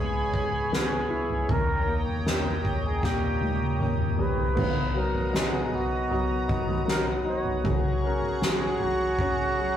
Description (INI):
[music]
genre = pop ballad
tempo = 78 BPM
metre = 4/4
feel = straight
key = unclear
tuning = A4 = 442 Hz
[part]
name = breathy flugelhorn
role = melody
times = 0.0-9.8 s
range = F#4 to C#5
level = -30 LUFS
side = right 2 dB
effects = none
[part]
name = warm concert grand piano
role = accompaniment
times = 0.0-9.8 s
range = A#2 to E4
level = -31 LUFS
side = left 2 dB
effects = none
[part]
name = chorused pulse-width pad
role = sustained chords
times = 0.0-9.8 s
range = B3 to D#6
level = -34 LUFS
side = left 1 dB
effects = none
[part]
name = direct-recorded clean electric guitar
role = arpeggios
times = 0.0-9.8 s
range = C#3 to A#4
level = -40 LUFS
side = right 4 dB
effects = none
[part]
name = warm sub bass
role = bass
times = 0.0-9.8 s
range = E1 to E2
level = -36 LUFS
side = equal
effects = none
[part]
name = soft-mallet drum kit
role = drums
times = 0.3-9.4 s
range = crash cymbal, kick drum, snare drum, toms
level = -27 LUFS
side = equal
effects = none
[sound]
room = moderate studio reverb, RT60 0.6 s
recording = rough rehearsal-room recording, warm saturation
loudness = -24 LUFS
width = side -10 dB against mid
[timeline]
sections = 0.0-4.6 A section; 4.6-9.8 B section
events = drum fill 3.0-4.6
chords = 0.0 C#m7; 1.5 D#7; 4.6 Bmaj7; 7.6 F#add9